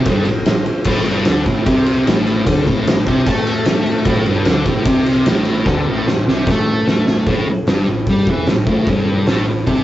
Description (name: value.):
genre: garage rock duo or trio.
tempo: 150 BPM.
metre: 4/4.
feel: straight.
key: unclear.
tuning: A4 = 440 Hz.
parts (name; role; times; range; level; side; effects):
thick fuzz guitar; riff; 0.0-9.8 s; G2 to A3; -16 LUFS; equal; distortion.
hollow-body short-scale picked electric bass; bass; 0.0-9.8 s; G1 to A2; -26 LUFS; equal; none.
oversized low-tuned drum kit; drums; 0.1-9.8 s; crash cymbal, hi-hat, kick drum, ride cymbal, snare drum; -16 LUFS; equal; none.
room: moderate studio ambience, RT60 0.5 s.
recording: rough rehearsal-room recording, cassette tape, nothing above 7.8 kHz.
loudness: -13 LUFS.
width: side -14 dB against mid.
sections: 0.0-7.3 A section; 7.3-9.8 B section.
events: drum fill 5.7-7.3.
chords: 0.0 Gsus24; 7.3 A5.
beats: 0.07 0.47 | 0.87 1.27 1.67 2.07 | 2.47 2.87 3.27 3.67 | 4.07 4.47 4.87 5.27 | 5.67 6.07 6.47 6.87 | 7.27 7.67 8.07 8.48 | 8.88 9.28 9.68.